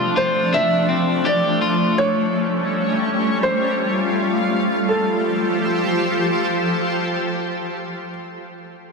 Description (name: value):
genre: dream pop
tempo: 83 BPM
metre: 4/4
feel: straight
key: F major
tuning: A4 = 439 Hz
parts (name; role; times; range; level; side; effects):
- shimmering ambient pad; sustained chords; 0.0-8.1 s; F3 to C5; -19 LUFS; equal; chorus, built-in reverb
- electric guitar at the edge of break-up; arpeggios; 0.0-2.0 s; C4 to G4; -23 LUFS; left 4 dB; wide subtle chorus, ping-pong delay
- felt-muted upright piano; melody; 0.2-8.1 s; A4 to E5; -22 LUFS; right 1 dB; ping-pong delay
room: wet lush hall reverb, RT60 2.7 s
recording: dense, heavily limited modern master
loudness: -17 LUFS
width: side -4 dB against mid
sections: 0.0-4.9 A section; 4.9-7.8 B section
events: none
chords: 0.0 Dm; 2.0 A7; 3.4 Fadd9